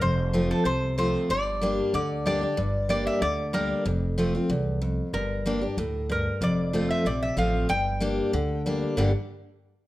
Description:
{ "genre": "bluegrass", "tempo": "187 BPM", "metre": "4/4", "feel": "straight", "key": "G dorian", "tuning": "A4 = 440 Hz", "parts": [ { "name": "lap resonator guitar", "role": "melody", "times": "0.0-8.6 s", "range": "A4 to G5", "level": "-28 LUFS", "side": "equal", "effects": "none" }, { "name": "picked steel-string acoustic guitar", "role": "accompaniment", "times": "0.0-9.1 s", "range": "E2 to G4", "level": "-26 LUFS", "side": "left 1 dB", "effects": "none" }, { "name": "upright bass", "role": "bass", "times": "0.0-9.1 s", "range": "F1 to D2", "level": "-30 LUFS", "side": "right 1 dB", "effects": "none" } ], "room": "moderate large studio reverb, RT60 1.1 s", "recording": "none", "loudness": "-23 LUFS", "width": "side -16 dB against mid", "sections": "0.0-6.4 A section; 6.4-9.0 B section", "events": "none", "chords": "0.0 F; 1.3 Gm; 3.9 F5; 5.1 Gm; 6.4 F; 7.7 Gm", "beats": "| 0.01 0.33 0.65 0.97 | 1.29 1.62 1.94 2.26 | 2.58 2.90 3.22 3.54 | 3.86 4.18 4.50 4.82 | 5.14 5.46 5.78 6.10 | 6.42 6.74 7.06 7.38 | 7.70 8.02 8.34 8.66 | 8.98" }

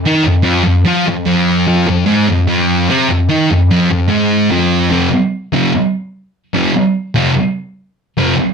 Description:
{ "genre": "rock", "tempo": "148 BPM", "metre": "4/4", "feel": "straight", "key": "unclear", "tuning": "A4 = 444 Hz", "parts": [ { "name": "thick fuzz guitar", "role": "solo", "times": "0.1-8.3 s", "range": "F2 to F4", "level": "-11 LUFS", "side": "equal", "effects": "distortion, slapback echo" } ], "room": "moderate small room reverb, RT60 0.5 s", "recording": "none", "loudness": "-11 LUFS", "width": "side -6 dB against mid", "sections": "0.0-4.9 A section; 4.9-8.5 B section", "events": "none", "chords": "0.0 F5", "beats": "| 0.05 0.46 0.86 1.27 | 1.67 2.08 2.48 2.89 | 3.29 3.70 4.10 4.51 | 4.92 5.32 5.73 6.13 | 6.54 6.95 7.35 7.76 | 8.16" }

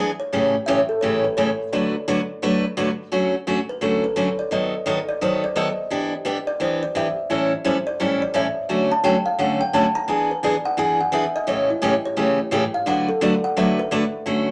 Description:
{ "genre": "country", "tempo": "172 BPM", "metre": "4/4", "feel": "swing 64% on 8ths", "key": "D major", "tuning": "A4 = 442 Hz", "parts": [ { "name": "kalimba", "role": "melody", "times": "0.0-13.9 s", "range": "E4 to Bb5", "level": "-26 LUFS", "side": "equal", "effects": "none" }, { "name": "picked steel-string acoustic guitar", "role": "accompaniment", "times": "0.0-14.5 s", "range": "A2 to B4", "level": "-23 LUFS", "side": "equal", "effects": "none" } ], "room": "wet club reverb, RT60 0.6 s", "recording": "none", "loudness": "-21 LUFS", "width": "mono", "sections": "0.0-3.1 A section; 3.1-14.3 B section", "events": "kalimba solo 3.1-14.3", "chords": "0.3 A7; 1.7 D6; 3.1 Dmaj7; 4.5 B7/D#; 5.9 Em7; 7.3 A7; 8.7 Dmaj7; 10.1 E7; 11.5 A7; 12.9 D6", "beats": "| 0.33 0.68 1.03 1.38 | 1.72 2.07 2.42 2.77 | 3.12 3.47 3.82 4.17 | 4.51 4.86 5.21 5.56 | 5.91 6.26 6.61 6.95 | 7.30 7.65 8.00 8.34 | 8.69 9.04 9.39 9.73 | 10.08 10.43 10.78 11.12 | 11.47 11.82 12.17 12.52 | 12.86 13.21 13.56 13.91 | 14.26" }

